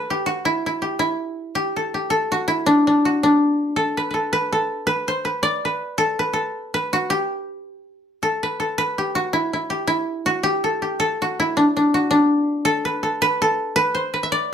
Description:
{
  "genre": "celtic folk",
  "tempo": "108 BPM (dotted quarters)",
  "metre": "6/8",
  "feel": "straight",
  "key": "unclear",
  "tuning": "A4 = 439 Hz",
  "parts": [
    { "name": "koto", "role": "solo", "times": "0.0-14.5 s", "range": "D4 to E5", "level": "-19 LUFS", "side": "equal", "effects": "none" }
  ],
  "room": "moderate studio reverb, RT60 0.6 s",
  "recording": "close, detailed microphones",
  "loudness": "-18 LUFS",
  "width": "side -8 dB against mid",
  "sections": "0.0-8.2 A section; 8.2-14.5 A section",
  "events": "none",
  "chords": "none",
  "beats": "| 0.44 0.99 | 1.55 2.10 | 2.66 3.21 | 3.77 4.32 | 4.88 5.43 | 5.99 6.54 | 7.09 7.65 | 8.20 8.76 | 9.31 9.86 | 10.41 10.97 | 11.52 12.07 | 12.63 13.18 | 13.74 14.29"
}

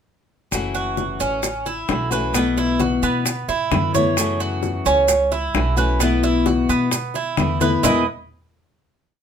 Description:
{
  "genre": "latin, Cuban son and guajira",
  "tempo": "131 BPM",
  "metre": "4/4",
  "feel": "straight",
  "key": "unclear",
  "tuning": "A4 = 440 Hz",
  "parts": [
    { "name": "flamenco guitar", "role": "accompaniment", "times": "0.5-8.0 s", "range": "E2 to F#4", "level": "-22 LUFS", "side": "left 5 dB", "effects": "none" },
    { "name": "upright bass", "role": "bass", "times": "0.5-8.1 s", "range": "F#1 to B2", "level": "-25 LUFS", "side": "right 1 dB", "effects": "none" },
    { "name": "bongos", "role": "percussion", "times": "0.5-7.9 s", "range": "none", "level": "-26 LUFS", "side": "left 5 dB", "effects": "none" },
    { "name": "congas", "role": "percussion", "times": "0.5-7.9 s", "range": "none", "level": "-29 LUFS", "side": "left 3 dB", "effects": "none" },
    { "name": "maracas", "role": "percussion", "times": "0.5-7.9 s", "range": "none", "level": "-27 LUFS", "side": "right 7 dB", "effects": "none" },
    { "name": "Cuban tres", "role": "arpeggios", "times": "0.7-8.1 s", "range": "B3 to D#5", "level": "-21 LUFS", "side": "right 4 dB", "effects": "none" }
  ],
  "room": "moderate studio reverb, RT60 0.5 s",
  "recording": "minimal, uncompressed stereo recording",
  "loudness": "-17 LUFS",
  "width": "side -8 dB against mid",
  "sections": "0.5-7.8 montuno (vamp); 7.8-9.2 final chord",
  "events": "none",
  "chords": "0.5 F#m7; 2.3 B7sus4; 4.2 F#m7; 6.0 B7sus4; 7.8 Emaj7",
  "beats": "| 0.52 0.98 1.44 1.89 | 2.35 2.80 3.26 3.72 | 4.17 4.63 5.09 5.55 | 6.00 6.46 6.92 7.38 | 7.84"
}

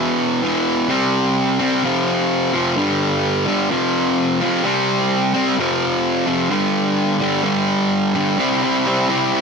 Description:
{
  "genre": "rock",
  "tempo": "128 BPM",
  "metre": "4/4",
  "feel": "straight",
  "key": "unclear",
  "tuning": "A4 = 440 Hz",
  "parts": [
    { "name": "fuzz guitar", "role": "solo", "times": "0.0-9.4 s", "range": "E2 to E4", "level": "-16 LUFS", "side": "equal", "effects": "distortion" }
  ],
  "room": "moderate large studio reverb, RT60 1.1 s, digital ambience",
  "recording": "none",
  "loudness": "-16 LUFS",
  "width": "side -5 dB against mid",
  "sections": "0.9-8.4 A section; 8.4-9.4 B section",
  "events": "none",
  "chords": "0.0 E5; 0.9 C5; 1.8 F5; 2.8 G5; 3.7 F5; 4.6 C5; 5.6 F5; 6.5 G5; 8.4 C",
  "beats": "0.43 | 0.90 1.36 1.83 2.30 | 2.77 3.23 3.70 4.17 | 4.64 5.11 5.57 6.04 | 6.51 6.98 7.45 7.91 | 8.38 8.85 9.32"
}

